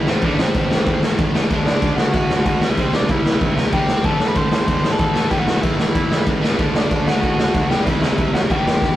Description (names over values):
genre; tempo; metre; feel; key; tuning
punk rock; 189 BPM; 4/4; straight; A dorian; A4 = 436 Hz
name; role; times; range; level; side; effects
biting lead guitar; melody; 0.0-8.9 s; C4 to C6; -22 LUFS; equal; overdrive
distorted electric guitar; riff; 0.0-9.0 s; E2 to D4; -24 LUFS; right 1 dB; overdrive
fuzz picked electric bass; bass; 0.0-8.9 s; E1 to A2; -26 LUFS; equal; overdrive
raw garage drum kit; drums; 0.1-8.9 s; crash cymbal, kick drum, snare drum; -18 LUFS; equal; none
room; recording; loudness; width
light reverb; rough rehearsal-room recording, tube saturation; -15 LUFS; side -14 dB against mid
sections
0.0-9.0 A section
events
none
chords
0.0 Am; 1.5 D; 2.6 C; 4.0 Am; 6.6 D; 7.7 C